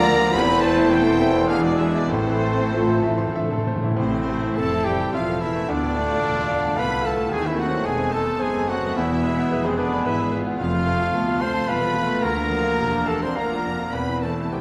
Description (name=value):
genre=classical, romantic movement for piano and orchestra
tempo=94-112 BPM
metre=3/4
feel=rubato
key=A minor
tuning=A4 = 440 Hz
part: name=bright grand piano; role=melody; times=0.0-14.6 s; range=D2 to C6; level=-27 LUFS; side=equal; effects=none
part: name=rich symphonic violin section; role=melody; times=0.0-14.6 s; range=C5 to C6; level=-36 LUFS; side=equal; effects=none
part: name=large flute ensemble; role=second line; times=0.0-3.3 s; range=C5 to B5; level=-34 LUFS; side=equal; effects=none
part: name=mellow clarinet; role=second line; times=0.0-3.7 s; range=C4 to F4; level=-30 LUFS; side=equal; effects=none
part: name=rich symphonic violin section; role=second line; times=0.0-14.6 s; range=G#4 to C6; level=-36 LUFS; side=equal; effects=none
part: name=warm oboe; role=second line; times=0.0-3.3 s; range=C5 to B5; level=-31 LUFS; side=equal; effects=none
part: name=rich symphonic viola section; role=accompaniment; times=0.0-14.6 s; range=C3 to A4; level=-32 LUFS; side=equal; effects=none
part: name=warm bassoon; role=accompaniment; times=0.0-3.7 s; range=G#3 to C4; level=-32 LUFS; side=equal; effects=none
part: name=clear trombone section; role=sustained chords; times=0.0-3.7 s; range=D3 to A3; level=-32 LUFS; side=equal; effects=none
part: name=dark French horn section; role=sustained chords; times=0.0-14.6 s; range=C3 to F4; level=-31 LUFS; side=equal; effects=none
part: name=mellow trumpet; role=stabs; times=0.0-14.6 s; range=C4 to D5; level=-28 LUFS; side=equal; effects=none
part: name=rich symphonic double bass section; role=bass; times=0.0-14.6 s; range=E1 to D#2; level=-34 LUFS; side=equal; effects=none
part: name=warm studio cello section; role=bass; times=0.0-14.6 s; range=C2 to A2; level=-35 LUFS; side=equal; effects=none
part: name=timpani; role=percussion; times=2.1-4.8, 13.9-14.6 s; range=E2 to A2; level=-32 LUFS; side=equal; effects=none
room=wet recital hall reverb, RT60 1.7 s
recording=none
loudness=-22 LUFS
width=mono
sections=0.0-4.0 A section; 4.0-14.6 B section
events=timpani fill 2.1-4.0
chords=0.3 Am/E; 1.5 E7; 2.1 Am; 5.7 Dm; 7.3 D#dim7; 9.0 E; 10.6 F; 12.3 Bb; 13.9 Am/E